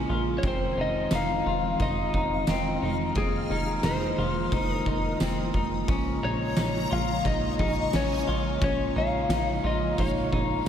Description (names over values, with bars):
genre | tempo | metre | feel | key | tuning
dream pop | 88 BPM | 4/4 | straight | unclear | A4 = 440 Hz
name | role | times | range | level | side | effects
mellow tonewheel organ | sustained chords | 0.0-10.7 s | Db3 to F4 | -32 LUFS | right 2 dB | slow rotary speaker
clean electric guitar | arpeggios | 0.0-10.7 s | C4 to F4 | -31 LUFS | left 2 dB | lush chorus, ping-pong delay
plucky analog bass | bass | 0.0-10.6 s | F1 to Bb1 | -31 LUFS | equal | none
electric slide guitar | melody | 0.4-10.7 s | Ab4 to F5 | -30 LUFS | left 2 dB | lush chorus, ping-pong delay
oversized low-tuned drum kit | drums | 0.4-10.7 s | kick drum, ride cymbal, snare drum, tambourine | -30 LUFS | equal | none
room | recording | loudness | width
moderate huge ambient reverb, RT60 7.3 s | dreamy mix soaked in reverb | -24 LUFS | side -9 dB against mid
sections
0.0-10.7 A section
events
none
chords
0.4 Fm7; 5.9 Bbm7